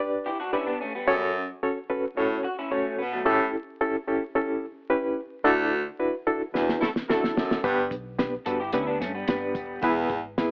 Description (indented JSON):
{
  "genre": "uptempo 1960s-style soul",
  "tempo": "110 BPM",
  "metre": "4/4",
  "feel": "straight",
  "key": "unclear",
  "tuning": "A4 = 440 Hz",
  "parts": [
    { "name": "barky reed electric piano", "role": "accompaniment", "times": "0.0-10.5 s", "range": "B3 to D5", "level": "-25 LUFS", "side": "equal", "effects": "overdrive, fast tremolo" },
    { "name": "electric guitar through a small old amp", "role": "riff", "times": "0.3-3.4, 8.5-9.8 s", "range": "F#3 to A4", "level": "-30 LUFS", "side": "equal", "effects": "analog chorus" },
    { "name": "clear baritone saxophone", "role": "riff", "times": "1.1-10.2 s", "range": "D2 to B2", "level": "-27 LUFS", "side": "equal", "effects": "none" },
    { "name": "cloth-damped thuddy drum kit", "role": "drums", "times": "6.6-10.5 s", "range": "hi-hat, kick drum, snare drum", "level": "-28 LUFS", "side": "equal", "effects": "none" },
    { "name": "mellow horn section", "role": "second line", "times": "6.8-7.6 s", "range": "F#3 to A4", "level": "-28 LUFS", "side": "equal", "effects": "none" },
    { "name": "vintage muted fingered electric bass", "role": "bass", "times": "7.6-10.5 s", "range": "D#1 to G2", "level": "-41 LUFS", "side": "equal", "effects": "none" }
  ],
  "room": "moderate studio reverb, RT60 0.5 s",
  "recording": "vinyl crackle, AM radio sound",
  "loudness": "-24 LUFS",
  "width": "side -32 dB against mid",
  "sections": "0.0-10.5 A section",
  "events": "band accent 5.4-7.6; drum fill 6.5-7.6",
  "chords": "0.0 G; 1.1 F#m; 3.3 A7; 5.4 Dadd9; 7.6 G; 9.8 E"
}